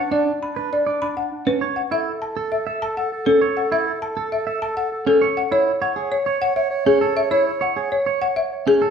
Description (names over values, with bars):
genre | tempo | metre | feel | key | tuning
classical, minimalist pattern music | 200 BPM | 6/4 | straight | unclear | A4 = 440 Hz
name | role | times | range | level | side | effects
folk marimba with medium hard mallets | melody | 0.0-8.9 s | G#4 to B5 | -20 LUFS | left 3 dB | none
clear clarinet | second line | 0.0-8.9 s | D4 to C#5 | -26 LUFS | right 6 dB | none
clean electric guitar | arpeggios | 0.1-8.9 s | C#4 to E5 | -24 LUFS | right 7 dB | none
room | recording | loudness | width
wet large studio reverb, RT60 1.1 s | heard from further back in the room | -18 LUFS | side -7 dB against mid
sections
0.0-8.9 A section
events
none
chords
0.0 Bm; 1.9 F#m; 5.5 Amaj7 (rootless)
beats
| 0.12 0.42 0.72 1.02 1.32 1.62 | 1.92 2.22 2.52 2.82 3.12 3.42 | 3.72 4.02 4.32 4.62 4.92 5.22 | 5.52 5.82 6.12 6.42 6.72 7.02 | 7.32 7.62 7.92 8.22 8.52 8.82